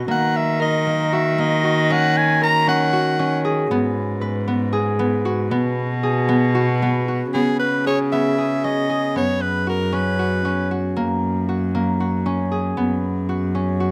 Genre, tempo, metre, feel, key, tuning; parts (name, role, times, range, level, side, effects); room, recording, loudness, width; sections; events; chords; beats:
contemporary instrumental, chamber music in an uneven meter; 232 BPM (eighths); 7/8; straight; A4 = 441 Hz
concert harp; arpeggios; 0.0-13.9 s; A#3 to B4; -24 LUFS; equal
warm cello; bass; 0.0-13.9 s; F#2 to D#3; -24 LUFS; equal
raspy soprano saxophone; melody; 0.1-3.4, 7.3-10.7 s; G#4 to A#5; -23 LUFS; equal
light reverb; close, detailed microphones; -20 LUFS; mono
0.0-7.3 A section; 7.3-13.9 B section
0.1 D#m7; 3.7 G#m7; 5.5 B5; 7.3 C#m9; 9.2 F#sus4; 11.0 F#add9; 12.8 F#sus4
| 0.08 0.34 0.60 0.86 1.12 1.38 1.64 | 1.90 2.16 2.42 2.67 2.93 3.19 3.44 | 3.70 3.96 4.21 4.47 4.73 4.99 5.24 | 5.50 5.76 6.02 6.28 6.54 6.81 7.07 | 7.33 7.60 7.86 8.12 8.38 8.64 8.90 | 9.16 9.41 9.67 9.93 10.19 10.45 10.71 | 10.96 11.22 11.48 11.73 11.99 12.25 12.51 | 12.76 13.02 13.28 13.54 13.80